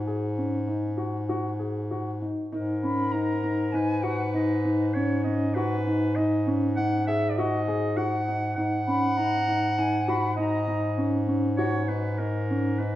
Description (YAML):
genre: contemporary instrumental, chamber music in an uneven meter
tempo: 99 BPM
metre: 5/4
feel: straight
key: G# minor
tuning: A4 = 444 Hz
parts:
  - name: clear bass clarinet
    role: bass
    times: 0.0-13.0 s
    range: G#2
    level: -28 LUFS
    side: left 1 dB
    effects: none
  - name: dark grand piano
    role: arpeggios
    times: 0.1-13.0 s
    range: C#4 to G#4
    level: -28 LUFS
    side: equal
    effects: none
  - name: warm clarinet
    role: second line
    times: 2.5-13.0 s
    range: A#4 to F#5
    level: -30 LUFS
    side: right 1 dB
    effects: none
  - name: mellow concert flute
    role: melody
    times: 2.8-10.9 s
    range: D#5 to B5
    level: -32 LUFS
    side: left 1 dB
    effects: none
room: wet recital hall reverb, RT60 1.8 s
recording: dark, warm production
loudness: -24 LUFS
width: side -14 dB against mid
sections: 0.0-2.5 A section; 2.5-13.0 B section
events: none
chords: 0.0 G#7(no3)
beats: 0.08 0.68 1.29 1.91 | 2.53 3.14 3.74 4.35 4.96 | 5.56 6.17 6.77 7.38 7.97 | 8.58 9.18 9.78 10.38 10.98 | 11.59 12.19 12.80